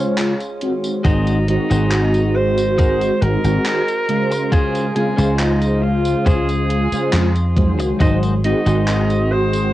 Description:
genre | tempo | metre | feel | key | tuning
vaporwave | 69 BPM | 4/4 | straight | unclear | A4 = 440 Hz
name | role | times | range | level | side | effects
breathy alto saxophone | melody | 0.0-9.7 s | Db4 to C5 | -22 LUFS | right 1 dB | tape echo
mellow synth brass | accompaniment | 0.0-9.7 s | Db3 to F5 | -20 LUFS | equal | ensemble chorus, cassette tape
warbly tape-like pad | sustained chords | 0.0-9.7 s | Gb4 to Eb6 | -28 LUFS | right 3 dB | chorus, built-in reverb, cassette tape
gated 80s digital drum machine | drums | 0.2-9.7 s | handclaps, hi-hat, tambourine | -28 LUFS | equal | gated reverb, cassette tape
clean electric guitar | riff | 1.0-9.3 s | Db4 to C5 | -27 LUFS | left 2 dB | analog chorus, cassette tape
dry thumbed slap bass | bass | 1.0-9.7 s | Ab1 to F2 | -18 LUFS | equal | none
electronic kick drum | drums | 1.0-8.2 s | none | -16 LUFS | equal | cassette tape
room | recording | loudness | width
light reverb | home recording on cassette, nothing above 10.5 kHz | -15 LUFS | side -15 dB against mid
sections
0.0-1.0 A section; 1.0-9.7 B section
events
break 0.0-1.0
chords
0.0 Dbmaj7; 1.0 Ab7; 4.5 Dbmaj7; 8.0 Ab7

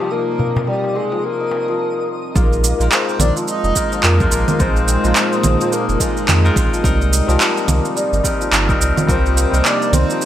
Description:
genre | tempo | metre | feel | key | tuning
organic downtempo | 107 BPM | 4/4 | swing 59% on 16ths | unclear | A4 = 440 Hz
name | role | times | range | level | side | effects
breathy flute-like synth lead | melody | 0.0-10.3 s | G4 to Eb5 | -22 LUFS | left 2 dB | lush chorus, digital delay
barky tine electric piano | accompaniment | 0.0-10.3 s | G3 to Bb4 | -23 LUFS | left 2 dB | phaser, sidechain pumping, digital delay
bowed-like drone | sustained chords | 0.0-10.3 s | Bb2 to Eb4 | -27 LUFS | right 2 dB | built-in reverb, sidechain pumping
santur | arpeggios | 0.0-10.3 s | F3 to Eb4 | -23 LUFS | left 2 dB | digital delay
twinkling granular texture | texture | 0.0-1.8 s | Eb5 | -38 LUFS | right 2 dB | built-in reverb
darbuka | percussion | 0.4-1.6 s | none | -23 LUFS | left 1 dB | none
warm sub bass | bass | 2.4-10.0 s | F1 to F2 | -16 LUFS | equal | sidechain pumping
electronic kick drum | drums | 2.4-9.2 s | none | -20 LUFS | equal | overdrive
electronic shaker, handclaps and congas | drums | 2.4-10.3 s | none | -18 LUFS | right 2 dB | overdrive
room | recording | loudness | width
moderate plate reverb, RT60 1.6 s | bright 1980s-style digital production | -14 LUFS | side -12 dB against mid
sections
0.0-2.4 A section; 2.4-10.3 B section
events
break 1.8-2.4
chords
0.0 Cm7; 2.4 Bb7sus4; 6.8 Cm7

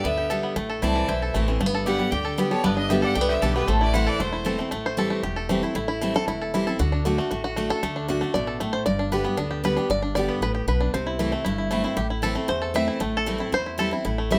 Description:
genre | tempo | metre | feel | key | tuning
bluegrass | 231 BPM | 4/4 | straight | A dorian | A4 = 439 Hz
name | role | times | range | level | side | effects
bluegrass banjo | melody | 0.0-14.4 s | E3 to E5 | -29 LUFS | equal | none
bright fiddle | melody | 0.0-4.6 s | B4 to G5 | -31 LUFS | equal | none
lap resonator guitar | second line | 0.0-4.6 s | G4 to D5 | -33 LUFS | equal | none
picked steel-string acoustic guitar | accompaniment | 0.0-14.4 s | E2 to G4 | -28 LUFS | equal | none
upright bass | bass | 0.0-14.4 s | E1 to E2 | -31 LUFS | equal | none
room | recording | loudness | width
light reverb | none | -24 LUFS | mono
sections
0.0-4.7 A section; 4.7-13.0 B section; 13.0-14.4 B section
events
five-string banjo solo 4.7-14.4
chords
0.0 G; 0.6 Am; 1.6 G; 3.7 Am; 4.7 Am7; 6.8 D; 8.9 G; 10.9 C6; 12.0 Am; 13.0 Am7

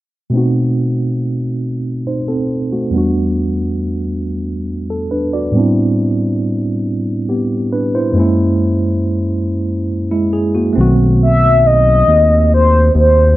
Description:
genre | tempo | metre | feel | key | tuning
slow six-eight R&B | 46 BPM (dotted quarters) | 6/8 | straight | unclear | A4 = 439 Hz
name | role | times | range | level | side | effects
tine electric piano | accompaniment | 0.3-13.4 s | E2 to D5 | -15 LUFS | right 1 dB | medium stereo tremolo
smooth synth bass | bass | 10.8-13.3 s | B1 to D#2 | -11 LUFS | equal | none
mellow horn-like synth lead | melody | 11.2-13.4 s | C5 to E5 | -11 LUFS | left 1 dB | chorus
room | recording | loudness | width
moderate studio ambience, RT60 0.5 s | low-pass filter | -12 LUFS | side -16 dB against mid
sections
0.3-10.8 A section; 10.8-13.4 B section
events
filter sweep 0.3-10.8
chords
0.3 B7b9; 2.9 Em7; 5.5 Am11; 8.2 F#7; 10.8 B7b9

